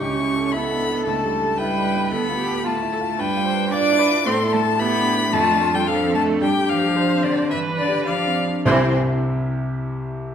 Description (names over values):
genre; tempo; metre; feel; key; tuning
quick classical-period movement for piano quartet; 112 BPM; 4/4; rubato; C major; A4 = 440 Hz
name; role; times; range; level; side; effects
warm violin; melody; 0.0-9.0 s; C5 to D6; -23 LUFS; left 6 dB; none
warm cello; second line; 0.0-9.0 s; D3 to D4; -24 LUFS; right 5 dB; none
rich viola; accompaniment; 0.0-9.0 s; E3 to D5; -25 LUFS; right 2 dB; none
warm baby grand piano; accompaniment; 0.0-10.3 s; C2 to E5; -23 LUFS; equal; none
room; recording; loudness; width
wet recital hall reverb, RT60 1.4 s; none; -18 LUFS; side -8 dB against mid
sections
0.0-8.6 A section; 8.6-10.3 B section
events
none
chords
0.0 A7/C#; 2.1 Dm; 3.2 G7; 4.3 A5; 5.3 Dm/F; 6.4 G7sus4; 8.6 C